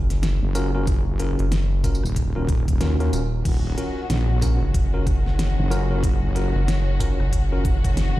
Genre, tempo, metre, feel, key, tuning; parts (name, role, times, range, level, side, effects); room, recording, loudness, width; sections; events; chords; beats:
glitch hop; 93 BPM; 4/4; swing 61% on 16ths; Eb minor; A4 = 440 Hz
rubbery square bass; bass; 0.0-8.1 s; Eb1 to Gb1; -21 LUFS; equal; tube saturation
pop drum kit; drums; 0.1-8.1 s; crash cymbal, hi-hat, rim click, snare drum, tambourine; -31 LUFS; equal
wobble bass; bass; 0.4-8.2 s; Eb1 to Eb2; -21 LUFS; equal; chorus, tube saturation
tine electric piano; stabs; 0.6-7.6 s; Db4 to Bb4; -30 LUFS; equal; vintage 12-bit sampler grit, sidechain pumping, ping-pong delay
electronic kick drum; drums; 0.9-7.9 s; -22 LUFS; equal
rich studio string section; sustained chords; 3.5-8.2 s; Eb3 to Gb4; -32 LUFS; left 2 dB; sidechain pumping
digital ambience; played on a big sound system in a bare room, large studio reverb; -19 LUFS; side -16 dB against mid
0.0-8.2 A section
0.0 Ebm7
0.23 | 0.88 1.52 2.17 2.81 | 3.46 4.10 4.75 5.39 | 6.04 6.68 7.33 7.97